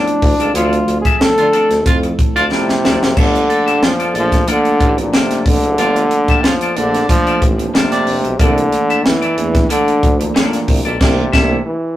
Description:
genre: funk.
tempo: 92 BPM.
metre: 4/4.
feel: straight.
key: unclear.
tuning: A4 = 440 Hz.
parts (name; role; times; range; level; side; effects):
bright trombone; melody; 0.0-12.0 s; Bb2 to A4; -16 LUFS; equal; tape echo.
clean electric guitar; accompaniment; 0.0-11.6 s; Bb3 to E5; -22 LUFS; left 3 dB; none.
tine electric piano; stabs; 0.0-11.6 s; E3 to F4; -22 LUFS; right 2 dB; medium stereo tremolo.
crisp fusion drum kit; drums; 0.1-11.5 s; crash cymbal, hi-hat, kick drum, snare drum; -16 LUFS; equal; none.
warm tuba; bass; 0.2-11.6 s; F1 to D3; -20 LUFS; right 1 dB; none.
clear baritone saxophone; second line; 1.4-8.2 s; D4 to A4; -20 LUFS; right 1 dB; none.
room: moderate studio reverb, RT60 0.5 s.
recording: rough rehearsal-room recording, tube saturation.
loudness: -12 LUFS.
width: side -14 dB against mid.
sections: 0.0-3.2 A section; 3.2-12.0 B section.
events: trombone solo 0.0-3.2; band accent 0.6-3.2, 11.0-12.0; drum fill 2.5-3.2.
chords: 0.0 Dm7; 3.2 Gm9 (rootless); 8.4 C13.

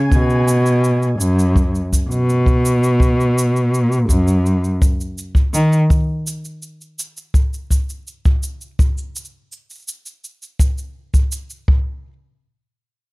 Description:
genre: folktronica.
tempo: 83 BPM.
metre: 4/4.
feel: straight.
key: B major.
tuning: A4 = 440 Hz.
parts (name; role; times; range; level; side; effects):
dark cello; bass; 0.1-5.8 s; F#2 to D#3; -15 LUFS; equal; none.
kick drum; drums; 0.1-11.8 s; none; -16 LUFS; equal; none.
shaker; drums; 0.1-11.6 s; none; -29 LUFS; right 2 dB; overdrive.
room: studio ambience.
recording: dark, warm production.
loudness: -15 LUFS.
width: side -23 dB against mid.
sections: 0.0-11.7 A section; 11.7-13.1 B section.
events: none.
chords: none.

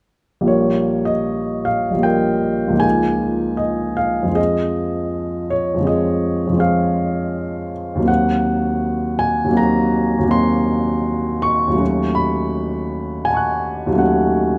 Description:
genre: classical, impressionist solo piano.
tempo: 80 BPM.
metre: 5/4.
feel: uneven beats, rubato.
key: Bb minor.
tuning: A4 = 440 Hz.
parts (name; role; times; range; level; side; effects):
clear baby grand piano; solo; 0.4-14.6 s; Bb1 to F#6; -18 LUFS; equal; none.
room: light reverb.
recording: close, detailed microphones.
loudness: -19 LUFS.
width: mono.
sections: 0.5-14.6 A section.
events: none.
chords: 0.5 Bb5; 2.8 Db69; 4.4 Fm7; 8.1 Ebm6; 11.8 B9/D#.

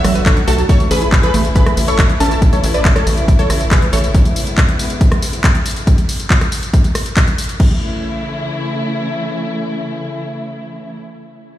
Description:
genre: uplifting trance.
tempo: 139 BPM.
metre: 4/4.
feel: straight.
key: A major.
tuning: A4 = 445 Hz.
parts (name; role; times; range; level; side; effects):
wide unison pluck; melody; 0.0-4.1 s; C#4 to E5; -21 LUFS; equal; sidechain pumping, dub echo.
supersaw stab; second line; 0.0-2.4 s; A5 to E6; -26 LUFS; right 2 dB; vintage 12-bit sampler grit, sidechain pumping, ping-pong delay.
dark studio string section; sustained chords; 0.0-11.0 s; C#3 to F#4; -23 LUFS; left 1 dB; sidechain pumping.
analog pluck; arpeggios; 0.0-2.4 s; F#3 to B4; -23 LUFS; right 3 dB; chorus, sidechain pumping, ping-pong delay.
tight sequencer bass; bass; 0.0-4.1 s; A1 to B1; -17 LUFS; equal; sidechain pumping.
house drum kit; drums; 0.0-7.7 s; crash cymbal, handclaps, hi-hat, rim click, tambourine; -21 LUFS; left 1 dB; none.
electronic kick drum; drums; 0.3-7.7 s; none; -13 LUFS; equal; none.
room: little or no reverb.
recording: played on a big sound system in a bare room, stone room reverb.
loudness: -12 LUFS.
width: side -13 dB against mid.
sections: 0.0-7.6 A section; 7.6-11.1 B section.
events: drop 0.0-7.6.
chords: 0.0 Bm7; 0.7 A; 4.1 C#m7; 5.9 N.C.; 7.6 A.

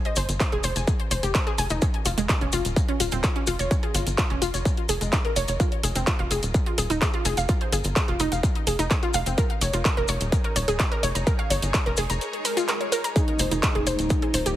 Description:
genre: melodic techno.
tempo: 127 BPM.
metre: 4/4.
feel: straight.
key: unclear.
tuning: A4 = 440 Hz.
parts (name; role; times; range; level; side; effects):
bright symphonic string section; texture; 0.0-14.6 s; Eb4 to Eb5; -41 LUFS; equal; none.
analog pluck; arpeggios; 0.1-14.5 s; Ab3 to Bb5; -28 LUFS; equal; chorus, sidechain pumping, ping-pong delay.
techno drum kit; drums; 0.1-14.6 s; handclaps, hi-hat; -29 LUFS; right 1 dB; overdrive, sidechain pumping on hats, sidechain pumping on cymbals.
tight sequencer bass; bass; 0.2-14.6 s; Eb1 to G1; -27 LUFS; equal; sidechain pumping.
maracas; percussion; 0.2-14.6 s; none; -32 LUFS; left 4 dB; none.
electronic kick drum; drums; 0.4-14.2 s; none; -24 LUFS; equal; distortion, overdrive.
swell; sound effects; 12.3-13.2 s; none; -34 LUFS; right 3 dB; none.
expressive synth lead; melody; 13.2-14.5 s; Eb4; -29 LUFS; equal; lush chorus, cassette tape, sidechain pumping.
warm analog pad; sustained chords; 13.2-14.6 s; Bb2 to Eb4; -33 LUFS; right 1 dB; chorus, sidechain pumping.
room: light reverb, digital ambience.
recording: heavily compressed radio sound, multiband compression.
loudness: -21 LUFS.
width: side -13 dB against mid.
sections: 0.0-14.6 A section.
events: swell 12.3-13.2.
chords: 0.0 Absus2; 1.8 Dbadd9; 5.6 Fm7; 9.4 Bbm7; 13.2 Dbadd9.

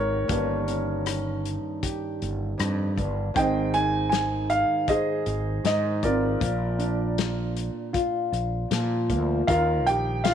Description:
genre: acoustic folk-pop ballad.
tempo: 78 BPM.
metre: 4/4.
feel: straight.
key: Eb major.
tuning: A4 = 441 Hz.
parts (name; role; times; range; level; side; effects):
warm baby grand piano; melody; 0.0-10.3 s; F4 to Ab5; -25 LUFS; right 1 dB; none.
nylon-string guitar; accompaniment; 0.0-10.3 s; F2 to Ab4; -28 LUFS; equal; none.
fretless electric bass; bass; 0.0-10.3 s; G1 to Bb2; -28 LUFS; equal; none.
loose indie drum kit; drums; 0.3-10.3 s; hi-hat, kick drum, rim click, snare drum; -30 LUFS; left 6 dB; none.
room: light reverb, studio ambience.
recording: 1960s-style stereo.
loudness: -23 LUFS.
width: side -9 dB against mid.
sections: 0.0-9.5 A section.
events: none.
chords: 0.3 Eb7/G; 3.4 Ab; 6.4 Bb; 9.5 Ebadd9.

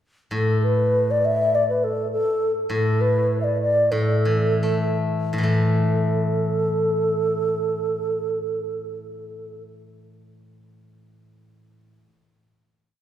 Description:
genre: chinese traditional, Chinese chamber ensemble.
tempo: 68-104 BPM.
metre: 2/4.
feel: rubato.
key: unclear.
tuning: A4 = 439 Hz.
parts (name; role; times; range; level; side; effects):
low xiao; melody; 0.3-9.6 s; A4 to E5; -22 LUFS; equal; none.
steel-string zither; accompaniment; 0.3-12.0 s; A2 to A3; -23 LUFS; equal; none.
room: wet concert hall reverb, RT60 1.8 s.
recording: heard from further back in the room.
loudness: -19 LUFS.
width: side -10 dB against mid.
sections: 0.3-5.5 A section; 5.5-8.9 final chord.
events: slowing down 2.7-5.5.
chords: none.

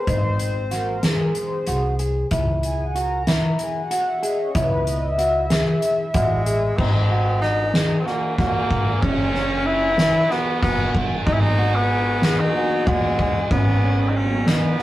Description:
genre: progressive instrumental, band music in an uneven meter.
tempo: 188 BPM (eighths).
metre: 7/8.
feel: straight.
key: unclear.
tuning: A4 = 435 Hz.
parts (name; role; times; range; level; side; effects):
chorused pulse-width pad; accompaniment; 0.0-6.6, 11.3-14.8 s; F#3 to B5; -26 LUFS; left 1 dB; none.
mellow electric guitar; arpeggios; 0.1-14.8 s; C#4 to G#4; -26 LUFS; right 2 dB; none.
upright bass; bass; 0.1-14.6 s; F#1 to D#2; -24 LUFS; equal; none.
soft-mallet drum kit; drums; 0.1-14.8 s; crash cymbal, hi-hat, kick drum, ride cymbal, snare drum; -22 LUFS; equal; none.
clear tenor saxophone; melody; 6.1-14.8 s; G#3 to E4; -23 LUFS; left 1 dB; slapback echo.
room: moderate small room reverb, RT60 0.5 s.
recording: rough rehearsal-room recording, warm saturation.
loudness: -18 LUFS.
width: side -15 dB against mid.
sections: 0.0-6.8 A section; 6.8-14.8 B section.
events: analog synth pad solo 0.0-6.8.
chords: 0.1 G#7; 2.3 C#m; 6.8 G#9; 9.0 F#5; 11.3 G#m9.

